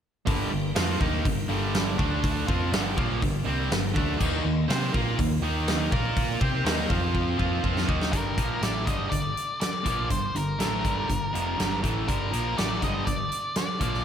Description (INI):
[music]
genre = classic rock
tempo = 122 BPM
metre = 4/4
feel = straight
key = G minor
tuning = A4 = 440 Hz
[part]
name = tonewheel organ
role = sustained chords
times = 0.3-8.1 s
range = G3 to C5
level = -39 LUFS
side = left 1 dB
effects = none
[part]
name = distorted electric guitar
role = riff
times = 0.3-14.0 s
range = F2 to C5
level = -30 LUFS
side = right 8 dB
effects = overdrive
[part]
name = sludgy distorted guitar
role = riff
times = 0.3-14.0 s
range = F2 to C5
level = -32 LUFS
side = left 9 dB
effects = overdrive
[part]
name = hollow-body short-scale fingered electric bass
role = bass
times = 0.3-14.0 s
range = F1 to C3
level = -31 LUFS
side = equal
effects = none
[part]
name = huge arena drum kit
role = drums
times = 0.3-14.0 s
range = crash cymbal, hi-hat, kick drum, snare drum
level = -28 LUFS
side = equal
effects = none
[part]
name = octave-fuzz lead guitar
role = melody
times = 8.1-14.0 s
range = Bb4 to Eb5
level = -30 LUFS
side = left 2 dB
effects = distortion, slapback echo
[sound]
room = moderate lush hall reverb, RT60 1.8 s, small room ambience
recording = big arena sound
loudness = -24 LUFS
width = side -8 dB against mid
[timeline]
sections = 0.3-8.1 A section; 8.1-14.0 B section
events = drum fill 7.2-8.1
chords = 0.3 Gm; 2.0 D5; 2.5 Gm; 4.2 Eb5; 5.9 Bb5; 6.4 Eb5; 6.9 F5; 7.4 Eb5; 8.1 Gm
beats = | 0.28 0.77 1.26 1.75 | 2.24 2.73 3.22 3.71 | 4.20 4.69 5.18 5.68 | 6.17 6.66 7.15 7.64 | 8.14 8.63 9.12 9.62 | 10.11 10.60 11.10 11.59 | 12.08 12.58 13.07 13.56